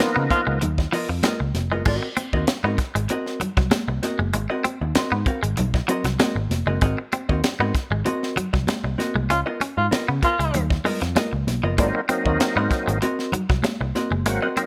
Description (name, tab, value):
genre	funk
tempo	97 BPM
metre	4/4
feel	straight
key	Ab mixolydian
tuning	A4 = 438 Hz
part	vintage hollow-body jazz guitar	accompaniment	0.0-14.6 s	Cb4 to F5	-30 LUFS	equal	none
part	overdriven tonewheel organ	stabs	0.0-0.6, 11.8-14.7 s	F3 to Gb4	-26 LUFS	equal	chorus vibrato, slow rotary speaker
part	vintage muted picked electric bass	bass	0.0-14.4 s	F1 to Db3	-27 LUFS	equal	none
part	tight funk drum kit	drums	0.0-14.7 s	crash cymbal, hi-hat, kick drum, snare drum	-27 LUFS	equal	none
part	congas	percussion	0.0-14.7 s	none	-32 LUFS	equal	none
part	clean electric guitar	riff	0.2-14.7 s	F3 to Db4	-29 LUFS	equal	none
part	breathy tenor saxophone	second line	0.3-0.4, 9.3-10.6 s	F4	-26 LUFS	equal	none
room	light reverb, small room ambience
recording	none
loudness	-23 LUFS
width	mono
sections	0.0-1.9 A section; 1.9-14.7 B section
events	band accent 0.0-1.9, 9.3-11.8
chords	0.0 Db13; 1.9 Ab9; 9.3 Db13; 11.8 Ab9